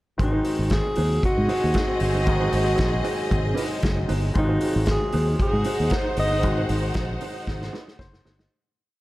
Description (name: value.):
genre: disco.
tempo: 115 BPM.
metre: 4/4.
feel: straight.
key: unclear.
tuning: A4 = 441 Hz.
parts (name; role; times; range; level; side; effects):
clear alto saxophone; melody; 0.2-6.7 s; Eb4 to Eb5; -26 LUFS; equal; none.
bright concert grand piano; accompaniment; 0.2-8.5 s; Eb3 to C5; -32 LUFS; left 2 dB; none.
mellow electric guitar; accompaniment; 0.2-8.5 s; Eb4 to Eb5; -34 LUFS; right 3 dB; none.
dark French horn section; sustained chords; 0.2-8.5 s; C3 to Ab4; -34 LUFS; equal; none.
fingered electric bass; bass; 0.2-8.5 s; Gb1 to Ab2; -24 LUFS; equal; none.
vintage drum kit; drums; 0.2-8.5 s; hi-hat, kick drum, snare drum; -27 LUFS; equal; none.
clear studio string section; second line; 1.2-8.5 s; C4 to Gb5; -30 LUFS; equal; none.
room: studio reverb.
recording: none.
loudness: -20 LUFS.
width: side -18 dB against mid.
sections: 0.2-8.5 pre-chorus.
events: fade-out 6.4-8.5; drum fill 7.5-8.5; grand piano fill 7.7-8.5.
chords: 0.2 Ab7.